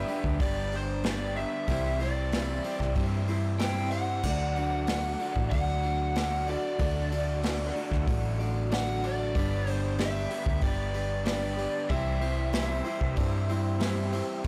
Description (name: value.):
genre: folk rock and heartland rock.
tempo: 94 BPM.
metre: 4/4.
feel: straight.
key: unclear.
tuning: A4 = 440 Hz.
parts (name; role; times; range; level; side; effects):
lead guitar through a small cranked amp; melody; 0.0-13.8 s; C5 to G5; -36 LUFS; equal; overdrive, tape echo.
picked steel-string acoustic guitar; accompaniment; 0.0-14.5 s; C3 to D5; -39 LUFS; equal; none.
mellow tonewheel organ; sustained chords; 0.0-14.4 s; D4 to E5; -46 LUFS; equal; none.
crunchy overdriven guitar; riff; 0.0-14.5 s; G2 to G4; -39 LUFS; equal; none.
hollow-body short-scale picked electric bass; bass; 0.0-14.5 s; G1 to G2; -33 LUFS; equal; transformer saturation.
soft brush drum kit; drums; 0.1-14.5 s; crash cymbal, hi-hat, kick drum, snare drum; -36 LUFS; equal; none.
reed electric piano; accompaniment; 4.2-14.4 s; F#4 to C6; -44 LUFS; equal; none.
room: light reverb, small room ambience.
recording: blown-out, overdriven recording, overdrive.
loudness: -29 LUFS.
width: mono.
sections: 0.0-14.5 A section.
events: reed electric piano fill 13.5-14.5.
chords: 0.0 G; 1.7 C; 4.2 D; 9.4 G; 11.9 C.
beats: 0.41 1.05 | 1.69 2.33 2.97 3.61 | 4.25 4.88 5.52 6.16 | 6.80 7.44 8.08 8.72 | 9.35 9.99 10.63 11.27 | 11.90 12.54 13.18 13.82 | 14.46.